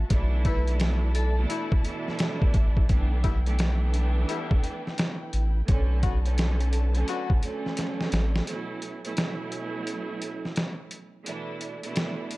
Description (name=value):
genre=hip hop, boom-bap hip-hop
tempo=86 BPM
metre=4/4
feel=swing 63% on 16ths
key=unclear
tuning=A4 = 436 Hz
part: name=rich studio string section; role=sustained chords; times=0.0-8.5 s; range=D3 to A5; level=-41 LUFS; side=left 2 dB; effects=high-pass filter, low-pass filter
part: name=round analog bass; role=bass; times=0.0-8.4 s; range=A1 to B1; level=-24 LUFS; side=equal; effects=none
part: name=clear studio string section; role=accompaniment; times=0.1-12.4 s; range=B2 to E4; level=-33 LUFS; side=right 3 dB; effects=cassette tape, high-pass filter, low-pass filter
part: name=trip hop sampler-style drum kit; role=drums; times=0.1-12.4 s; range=hi-hat, kick drum, snare drum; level=-26 LUFS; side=equal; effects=none
part: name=vibraphone with hard mallets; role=melody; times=0.5-1.4 s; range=A4 to B5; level=-34 LUFS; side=right 1 dB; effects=high-pass filter, low-pass filter, slapback echo
part: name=clear horn section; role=stabs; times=0.5-7.3 s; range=G3 to F#4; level=-34 LUFS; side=left 8 dB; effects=high-pass filter, low-pass filter, slapback echo
room=little or no reverb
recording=dark, warm production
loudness=-24 LUFS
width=side -20 dB against mid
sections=0.0-8.5 A section; 8.5-12.4 B section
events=drum fill 7.8-8.5; break 8.5-12.4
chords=0.1 Dsus2/B; 2.9 G6/B; 5.7 Bm7; 8.5 F#m7/B; 11.3 Dsus2/B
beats=| 0.10 0.80 1.50 2.20 | 2.90 3.59 4.29 4.99 | 5.68 6.38 7.08 7.78 | 8.48 9.17 9.87 10.57 | 11.27 11.96